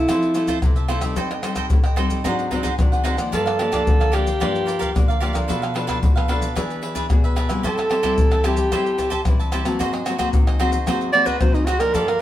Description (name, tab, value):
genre	samba and choro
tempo	111 BPM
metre	4/4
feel	straight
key	unclear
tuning	A4 = 436 Hz
part	breathy alto saxophone	melody	0.0-12.2 s	Eb4 to D5	-20 LUFS	right 1 dB	none
part	cavaquinho	accompaniment	0.0-12.2 s	D4 to A5	-26 LUFS	right 3 dB	none
part	nylon-string guitar	accompaniment	0.0-12.2 s	G2 to G#4	-26 LUFS	left 2 dB	none
part	maracas, surdo, pandeiro and tamborim	percussion	0.1-12.2 s	none	-20 LUFS	left 1 dB	none
room	moderate studio reverb, RT60 0.8 s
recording	band playing live in one room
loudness	-18 LUFS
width	side -13 dB against mid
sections	0.0-12.2 A section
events	alto saxophone solo 0.0-12.2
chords	0.0 Fmaj7; 1.2 Am7b5; 2.2 Ab7#11; 3.3 Gm7; 5.5 Bm7b5; 6.6 E7; 7.6 Am7; 9.8 Ab9